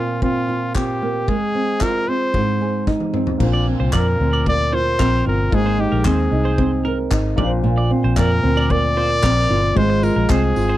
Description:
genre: acoustic pop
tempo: 113 BPM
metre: 4/4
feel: straight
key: Bb mixolydian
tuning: A4 = 441 Hz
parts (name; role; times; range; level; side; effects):
- bright trumpet; melody; 0.0-10.8 s; F4 to D5; -21 LUFS; left 1 dB; none
- flamenco guitar; accompaniment; 0.0-10.8 s; Ab2 to Bb4; -20 LUFS; right 2 dB; none
- loose indie drum kit; drums; 0.2-10.7 s; crash cymbal, handclaps, kick drum, snare drum, tambourine, toms; -24 LUFS; left 1 dB; none
- dark upright piano; accompaniment; 3.4-10.8 s; Ab3 to C5; -30 LUFS; left 6 dB; none
- vintage muted fingered electric bass; bass; 3.4-10.8 s; G1 to F2; -20 LUFS; left 1 dB; none
- twelve-string electric guitar; arpeggios; 3.5-10.8 s; Bb4 to D5; -28 LUFS; right 4 dB; none
room: little or no reverb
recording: none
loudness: -16 LUFS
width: side -14 dB against mid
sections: 0.0-3.4 A section; 3.4-10.8 B section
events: drum fill 2.9-3.4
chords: 0.0 Bbsus2; 1.3 Fm/Ab; 2.3 Ab; 3.4 Bbadd9; 5.5 Abadd9; 7.4 Bbadd9; 9.8 Fm/Ab

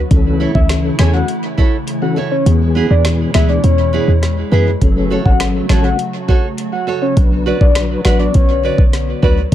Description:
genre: dancehall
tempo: 102 BPM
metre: 4/4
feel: straight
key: unclear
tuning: A4 = 436 Hz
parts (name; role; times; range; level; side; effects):
- hollow soft pad; sustained chords; 0.0-9.5 s; B2 to F#4; -23 LUFS; right 1 dB; ensemble chorus, sidechain pumping
- short 808-style bass; bass; 0.0-9.5 s; F#1 to F#2; -14 LUFS; equal; none
- mellow tonewheel organ; accompaniment; 0.1-9.5 s; E3 to B4; -20 LUFS; left 4 dB; chorus vibrato, fast rotary speaker, tape echo
- island pop drum kit; drums; 0.1-9.5 s; finger snaps, hi-hat, kick drum, snare drum; -15 LUFS; equal; vintage 12-bit sampler grit
- nylon-string guitar; arpeggios; 0.4-9.4 s; B3 to D5; -22 LUFS; right 7 dB; tape echo
- soft octave-layered synth lead; melody; 0.5-9.4 s; B4 to A5; -20 LUFS; left 2 dB; chorus, phaser, tape echo
room: digital ambience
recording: echo-heavy mix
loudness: -11 LUFS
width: side -12 dB against mid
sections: 0.0-9.5 A section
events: kick muted 2.5-4.8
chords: 0.1 A/C#; 2.5 E; 4.8 F#m; 7.2 Bm

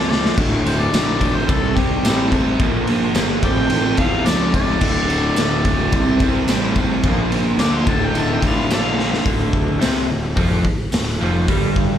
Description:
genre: garage rock duo or trio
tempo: 108 BPM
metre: 4/4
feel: straight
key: D minor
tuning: A4 = 440 Hz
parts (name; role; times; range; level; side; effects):
- overdriven harmonica; melody; 0.0-9.3 s; G4 to D6; -24 LUFS; left 3 dB; slapback echo
- crunchy overdriven guitar; riff; 0.0-12.0 s; D2 to C4; -19 LUFS; equal; none
- fuzz picked electric bass; bass; 0.0-12.0 s; D1 to E2; -23 LUFS; equal; overdrive
- raw garage drum kit; drums; 0.1-11.9 s; crash cymbal, hi-hat, kick drum, ride cymbal, snare drum; -20 LUFS; equal; none
- tambourine; percussion; 0.9-11.1 s; none; -33 LUFS; right 3 dB; none
room: studio reverb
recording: live gig heard through the venue's PA, club reverb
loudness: -15 LUFS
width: side -10 dB against mid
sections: 0.0-9.3 A section; 9.3-12.0 B section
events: drum fill 0.0-0.4, 9.0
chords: 0.4 D5; 1.5 C5; 2.6 Bb5; 3.4 F/A; 4.8 D5; 5.9 C5; 7.0 Bb; 7.9 Dm

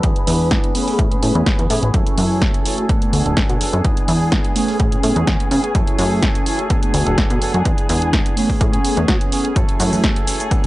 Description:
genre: filtered disco house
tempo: 126 BPM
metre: 4/4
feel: straight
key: F# minor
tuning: A4 = 440 Hz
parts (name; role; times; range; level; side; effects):
- mellow synth brass; accompaniment; 0.0-10.7 s; G#3 to G#4; -23 LUFS; equal; chorus, phaser, cassette tape, sidechain pumping, low-pass filter
- muted chamber violin section; sustained chords; 0.0-10.7 s; G#4 to B5; -27 LUFS; left 3 dB; sidechain pumping, low-pass filter
- direct-recorded clean electric guitar; riff; 0.0-10.7 s; E3 to A4; -26 LUFS; right 3 dB; vintage 12-bit sampler grit, sidechain pumping, low-pass filter
- plucky analog bass; bass; 0.0-10.1 s; D1 to F#3; -19 LUFS; equal; sidechain pumping, low-pass filter
- electronic kick drum; drums; 0.0-10.6 s; none; -18 LUFS; equal; none
- punchy analog drum machine; drums; 0.0-10.7 s; hi-hat, shaker, snare drum; -22 LUFS; equal; sidechain pumping on hats, sidechain pumping on cymbals, sidechain pumping on perc
- tambourine and congas; percussion; 9.6-10.7 s; none; -31 LUFS; right 2 dB; none
room: little or no reverb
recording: dry, gritty hardware recording, transformer saturation, nothing above 10.6 kHz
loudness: -14 LUFS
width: side -18 dB against mid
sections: 0.0-10.7 A section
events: filter sweep 0.0-10.7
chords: 0.0 E7; 0.8 Amaj9; 1.9 F#m7; 2.9 D6; 3.8 E7; 4.6 Amaj9; 5.8 F#m7; 6.7 D6; 7.7 E7; 8.4 Amaj9; 9.6 F#m7

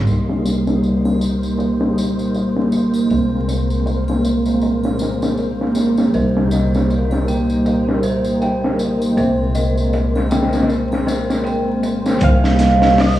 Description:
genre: trip hop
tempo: 79 BPM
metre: 4/4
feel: swing 58% on 16ths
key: unclear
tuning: A4 = 440 Hz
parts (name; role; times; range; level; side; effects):
- mellow tonewheel organ; accompaniment; 0.0-13.2 s; G3 to Eb4; -19 LUFS; equal; chorus vibrato, slow rotary speaker, tremolo, tape echo
- upright bass; bass; 0.0-13.2 s; C2; -21 LUFS; equal; none
- wind-like tuned noise texture; texture; 0.0-13.2 s; C5; -32 LUFS; left 1 dB; built-in reverb
- string machine, cellos; sustained chords; 0.1-13.2 s; Bb3 to Bb4; -23 LUFS; right 1 dB; phaser, ensemble chorus
- crunchy breakbeat drum kit; drums; 0.1-13.2 s; hi-hat, kick drum, snare drum; -22 LUFS; left 1 dB; low-pass filter on kick, low-pass filter on hats, low-pass filter on snare, low-pass filter on room
- tambourine and triangle; percussion; 0.1-12.2 s; none; -37 LUFS; left 1 dB; none
- dark detuned synth bell; arpeggios; 6.1-13.2 s; C5 to G5; -25 LUFS; equal; chorus, phaser, tape echo
- electric guitar with an envelope filter; melody; 12.2-13.2 s; Eb5 to F5; -17 LUFS; right 4 dB; none
room: moderate plate reverb, RT60 2.1 s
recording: played on a big sound system in a bare room, large studio reverb, vinyl crackle, small room ambience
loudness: -15 LUFS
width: side -14 dB against mid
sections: 0.1-12.2 A section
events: none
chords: 0.1 Eb/C; 3.1 Abadd9/C; 6.1 Eb/C; 9.2 Abadd9/C; 12.2 Eb/C

